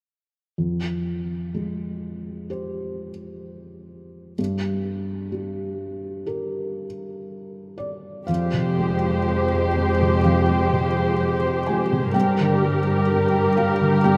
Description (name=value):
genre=cinematic, emotional film score for orchestra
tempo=63 BPM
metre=4/4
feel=rubato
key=F dorian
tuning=A4 = 437 Hz
part: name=felt-muted upright piano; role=accompaniment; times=0.6-14.2 s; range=F2 to Ab5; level=-27 LUFS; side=equal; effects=none
part: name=muted symphonic violin section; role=melody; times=8.3-14.2 s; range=Bb4 to C5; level=-28 LUFS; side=equal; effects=none
part: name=muted symphonic violin section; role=second line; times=8.3-14.2 s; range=G4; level=-29 LUFS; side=equal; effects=none
part: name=muted symphonic viola section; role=accompaniment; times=8.3-14.2 s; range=G3 to Ab3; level=-31 LUFS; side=equal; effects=none
part: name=muted symphonic cello section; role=bass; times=8.3-14.2 s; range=F2 to G2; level=-26 LUFS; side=equal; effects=none
room=wet cathedral reverb, RT60 6.4 s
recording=in a vast, echoing space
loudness=-23 LUFS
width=mono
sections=0.6-8.3 A section; 8.3-14.2 B section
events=none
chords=0.6 Fmadd9; 4.4 Gm; 8.3 Fmadd9; 12.1 Gm